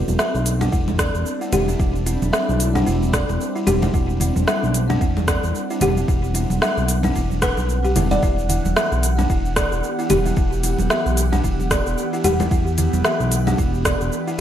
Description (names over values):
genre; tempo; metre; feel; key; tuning
organic downtempo; 112 BPM; 4/4; swing 58% on 16ths; E minor; A4 = 440 Hz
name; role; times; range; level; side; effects
airy breathy pad; sustained chords; 0.0-14.4 s; E3 to F#5; -26 LUFS; equal; chorus, sidechain pumping
smooth synth bass; bass; 0.0-14.1 s; E1 to B1; -21 LUFS; equal; sidechain pumping
organic electronic drum kit; drums; 0.1-14.4 s; congas, hi-hat, rim click, shaker; -24 LUFS; equal; gated reverb
congas; percussion; 0.1-14.0 s; none; -28 LUFS; right 3 dB; none
buzzing kalimba; arpeggios; 0.2-14.4 s; D4 to E5; -24 LUFS; equal; digital delay
electronic kick drum; drums; 0.7-14.0 s; none; -23 LUFS; equal; none
room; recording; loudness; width
moderate plate reverb, RT60 1.3 s; bright 1980s-style digital production; -17 LUFS; side -10 dB against mid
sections
0.0-8.2 A section; 8.2-14.4 B section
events
none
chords
0.0 C/E; 8.2 Em7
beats
0.19 0.73 1.26 | 1.80 2.33 2.87 3.40 | 3.94 4.48 5.01 5.55 | 6.08 6.62 7.16 7.69 | 8.23 8.76 9.30 9.83 | 10.37 10.90 11.44 11.98 | 12.51 13.05 13.58 14.12